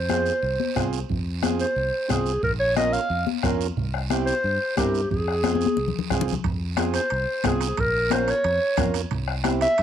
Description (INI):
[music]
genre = latin, cumbia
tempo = 180 BPM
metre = 4/4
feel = straight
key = F harmonic minor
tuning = A4 = 440 Hz
[part]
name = warm clarinet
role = melody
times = 0.0-9.8 s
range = G4 to F5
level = -24 LUFS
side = equal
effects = cassette tape, tape echo
[part]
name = fingered electric bass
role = bass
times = 0.0-9.8 s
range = Bb1 to G2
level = -28 LUFS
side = equal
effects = none
[part]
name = combo organ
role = accompaniment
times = 0.1-9.7 s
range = C4 to Bb4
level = -29 LUFS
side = right 8 dB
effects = cassette tape, plate reverb
[part]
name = bombo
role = percussion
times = 0.1-9.6 s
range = none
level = -28 LUFS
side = left 1 dB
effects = none
[part]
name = congas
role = percussion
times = 0.1-9.6 s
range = none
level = -28 LUFS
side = left 11 dB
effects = none
[part]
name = guiro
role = percussion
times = 0.1-9.8 s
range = none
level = -37 LUFS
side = right 13 dB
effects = none
[part]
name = timbales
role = percussion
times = 6.4-9.8 s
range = none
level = -36 LUFS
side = right 13 dB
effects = none
[sound]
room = moderate booth ambience, RT60 0.2 s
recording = home recording on cassette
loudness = -21 LUFS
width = side -9 dB against mid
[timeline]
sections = 0.0-6.4 A section; 6.4-9.8 A section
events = drum fill 5.4-6.4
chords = 0.0 Fm; 2.4 Bbm; 3.8 C7; 5.1 Fm; 7.8 Bbm; 9.1 C